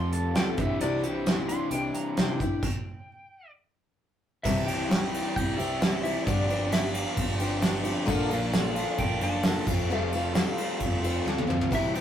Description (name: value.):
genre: folk rock and heartland rock.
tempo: 132 BPM.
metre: 4/4.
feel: straight.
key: C major.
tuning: A4 = 440 Hz.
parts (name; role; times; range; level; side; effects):
pedal steel guitar; melody; 0.0-12.0 s; C5 to C6; -35 LUFS; equal; none.
picked twelve-string acoustic guitar; accompaniment; 0.0-12.0 s; G2 to A4; -31 LUFS; left 3 dB; none.
raw garage guitar; riff; 0.0-12.0 s; F2 to G4; -33 LUFS; right 2 dB; overdrive.
hollow-body short-scale picked electric bass; bass; 0.0-12.0 s; F1 to F2; -34 LUFS; equal; none.
soft brush drum kit; drums; 0.1-12.0 s; crash cymbal, hi-hat, kick drum, ride cymbal, snare drum, toms; -28 LUFS; right 1 dB; none.
room: light reverb.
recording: rough rehearsal-room recording, warm saturation.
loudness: -25 LUFS.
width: side -10 dB against mid.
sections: 0.0-4.4 A section; 4.4-12.0 B section.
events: pedal steel guitar solo 0.0-4.4; stop 2.6-4.4; drum fill 11.3-11.7.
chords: 0.0 Fadd9; 0.6 Cadd9; 2.6 N.C.; 4.4 C; 6.3 G7sus4; 8.1 Bbmaj7; 9.7 Fadd9.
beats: 0.35 | 0.81 1.26 1.72 2.17 | 2.63 3.08 3.54 3.99 | 4.45 4.90 5.35 5.81 | 6.26 6.72 7.17 7.62 | 8.08 8.53 8.99 9.44 | 9.89 10.35 10.80 11.26 | 11.71.